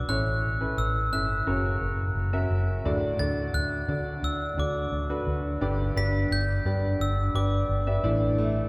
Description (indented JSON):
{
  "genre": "pop",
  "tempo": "87 BPM",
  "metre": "4/4",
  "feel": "straight",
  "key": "unclear",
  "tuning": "A4 = 436 Hz",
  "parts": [
    { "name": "glockenspiel with brass mallets", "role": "melody", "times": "0.0-8.0 s", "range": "D6 to B6", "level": "-34 LUFS", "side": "equal", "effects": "none" },
    { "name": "clear concert grand piano", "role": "accompaniment", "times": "0.0-8.7 s", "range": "G2 to E5", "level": "-32 LUFS", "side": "equal", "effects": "none" },
    { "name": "vintage muted fingered electric bass", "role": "bass", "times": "0.0-8.6 s", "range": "F#1 to D3", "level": "-30 LUFS", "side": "equal", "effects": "none" },
    { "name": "clear woodwind section", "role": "sustained chords", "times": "2.8-8.7 s", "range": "E3 to D4", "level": "-41 LUFS", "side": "equal", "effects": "none" },
    { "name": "fingerpicked plugged-in steel-string acoustic guitar", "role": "riff", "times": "8.4-8.7 s", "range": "A3", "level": "-33 LUFS", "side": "equal", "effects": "none" }
  ],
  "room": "wet church reverb, RT60 3.3 s",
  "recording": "recorded in a church or concert hall",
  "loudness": "-27 LUFS",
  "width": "mono",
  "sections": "0.0-2.9 A section; 2.9-8.7 B section",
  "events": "none",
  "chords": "0.1 A; 1.5 F#; 2.9 D; 5.6 G; 8.0 Asus4",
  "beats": "| 0.09 0.78 1.47 2.16 | 2.85 3.54 4.24 4.93 | 5.62 6.31 7.00 7.69 | 8.38"
}